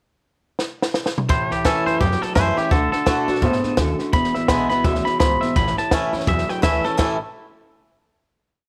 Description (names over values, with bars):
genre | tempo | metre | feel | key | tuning
rockabilly | 169 BPM | 4/4 | swing 60% on 8ths | A major | A4 = 440 Hz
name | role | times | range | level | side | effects
compact cocktail drum kit | drums | 0.6-7.1 s | hi-hat, kick drum, ride cymbal, snare drum, toms | -24 LUFS | equal | none
twangy electric guitar | melody | 1.3-7.2 s | G4 to B5 | -25 LUFS | equal | tape echo
picked swing-style acoustic guitar | accompaniment | 1.3-7.2 s | E2 to F#4 | -26 LUFS | equal | none
electric guitar through a small old amp | riff | 1.3-7.2 s | E2 to E4 | -29 LUFS | equal | spring reverb
upright bass | bass | 1.3-7.2 s | E1 to B2 | -28 LUFS | equal | none
room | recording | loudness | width
light reverb | none | -20 LUFS | mono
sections
0.0-1.3 pickup bar; 1.3-7.0 A section; 7.0-8.4 final chord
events
drum fill 0.6-1.3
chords
0.0 N.C.; 1.3 A; 2.7 D; 4.1 E7; 5.6 A